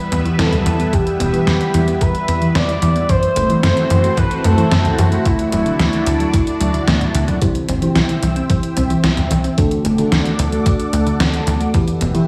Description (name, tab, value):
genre	synthwave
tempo	111 BPM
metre	4/4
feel	straight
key	unclear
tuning	A4 = 440 Hz
part	expressive portamento lead	melody	0.0-6.8 s	E4 to D5	-23 LUFS	equal	analog chorus, tape echo
part	lush unison pad	sustained chords	0.0-12.3 s	G3 to E6	-26 LUFS	equal	chorus, phaser, sidechain pumping
part	thumb-piano-like synth pluck	arpeggios	0.1-12.3 s	D3 to E4	-23 LUFS	equal	chorus, cassette tape, tape echo
part	tight sequencer bass	bass	0.1-12.2 s	D1 to F#2	-22 LUFS	equal	sidechain pumping
part	detuned 8-bit digital drum machine	drums	0.1-12.3 s	hi-hat, snare drum, toms	-22 LUFS	equal	gated reverb
part	electronic kick drum	drums	0.9-11.8 s	none	-21 LUFS	equal	none
part	FM electric piano with soft pad layer	stabs	7.4-12.3 s	C3 to C5	-24 LUFS	equal	chorus, low-pass filter, tape echo
room	moderate digital room reverb, RT60 1.0 s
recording	small room ambience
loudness	-16 LUFS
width	mono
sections	0.0-7.4 A section; 7.4-12.3 B section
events	drum fill 6.9-7.4; filter sweep on synth arpeggio sound 7.4-12.3; filter sweep on FM electric piano 7.4-12.3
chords	0.0 Em; 3.1 F#m7b5; 5.3 Dadd9; 7.4 C; 9.6 D; 11.7 Em